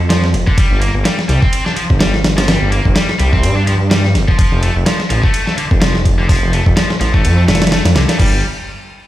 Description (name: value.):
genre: breakbeat, breaks.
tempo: 126 BPM.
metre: 4/4.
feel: swing 56% on 16ths.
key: unclear.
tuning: A4 = 440 Hz.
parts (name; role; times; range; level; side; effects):
detuned saw bass; bass; 0.0-8.4 s; F1 to G2; -14 LUFS; equal; none.
scooped high-gain guitar; riff; 0.1-8.4 s; D3 to D4; -19 LUFS; left 1 dB; distortion, tape echo.
dusty soul sampler-style drum kit; drums; 0.1-8.3 s; crash cymbal, hi-hat, kick drum, ride cymbal, snare drum; -14 LUFS; equal; overdrive.
room: little or no reverb.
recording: played on a big sound system in a bare room, stone room reverb.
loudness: -11 LUFS.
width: side -14 dB against mid.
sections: 0.0-8.2 A section.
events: drop 0.0-8.2.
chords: 0.0 N.C.; 4.4 F; 8.2 N.C..